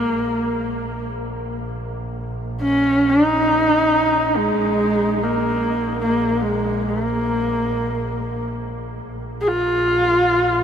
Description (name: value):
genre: mongolian traditional, Mongolian folk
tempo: free time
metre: none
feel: none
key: Bb yu mode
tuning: A4 = 441 Hz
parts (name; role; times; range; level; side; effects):
- rich horsehead fiddle; melody; 0.0-10.6 s; Ab3 to Ab4; -18 LUFS; equal; none
- rich double bass; drone; 0.0-10.6 s; Bb1; -28 LUFS; right 1 dB; none
room: wet huge ambient reverb, RT60 9.2 s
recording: in a vast, echoing space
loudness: -18 LUFS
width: side -8 dB against mid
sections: 0.0-10.6 A section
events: none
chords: none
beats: free time